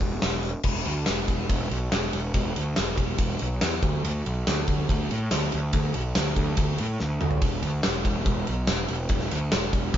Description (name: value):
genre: classic rock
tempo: 142 BPM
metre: 4/4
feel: straight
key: unclear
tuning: A4 = 441 Hz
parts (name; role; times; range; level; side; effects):
- fuzz picked electric bass; bass; 0.0-10.0 s; E1 to A2; -27 LUFS; equal; overdrive
- gated 80s drum kit; drums; 0.0-10.0 s; crash cymbal, hi-hat, kick drum, ride cymbal, snare drum, toms; -26 LUFS; equal; none
room: light reverb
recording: band playing live in one room, nothing above 7.4 kHz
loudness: -23 LUFS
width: side -11 dB against mid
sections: 0.7-10.0 A section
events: drum fill 7.0-7.4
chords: none